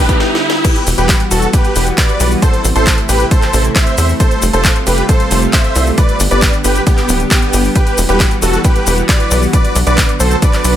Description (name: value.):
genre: uplifting trance.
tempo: 135 BPM.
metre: 4/4.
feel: straight.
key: E minor.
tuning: A4 = 440 Hz.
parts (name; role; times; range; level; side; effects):
dense compressed supersaw; melody; 0.0-10.7 s; B3 to E5; -16 LUFS; equal; vintage 12-bit sampler grit, sidechain pumping, digital delay.
lush unison pad; sustained chords; 0.0-10.8 s; C3 to G4; -19 LUFS; equal; chorus, sidechain pumping.
tight sequencer bass; bass; 0.0-10.8 s; D1 to E2; -14 LUFS; equal; sidechain pumping, high-pass filter.
riser and swell; sound effects; 0.0-0.6 s; none; -17 LUFS; equal; none.
electronic kick drum; drums; 0.1-10.5 s; none; -12 LUFS; equal; none.
techno drum kit; drums; 0.1-10.7 s; crash cymbal, handclaps, hi-hat, shaker, snare drum; -17 LUFS; left 1 dB; high-pass filter on hats, high-pass filter on perc, high-pass filter on snare, high-pass filter on cymbals.
room: light reverb, digital ambience.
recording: none.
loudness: -10 LUFS.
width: side -11 dB against mid.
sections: 0.6-10.8 A section.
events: drum fill 0.0, 0.2-0.6; riser 0.0-0.6; swell 0.0-0.6; stop 0.2-0.6; drop 0.6-10.8.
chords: 0.0 G; 0.6 Emadd9; 2.4 Am; 4.2 Fadd9; 6.0 G; 7.8 Emadd9; 9.5 Bm.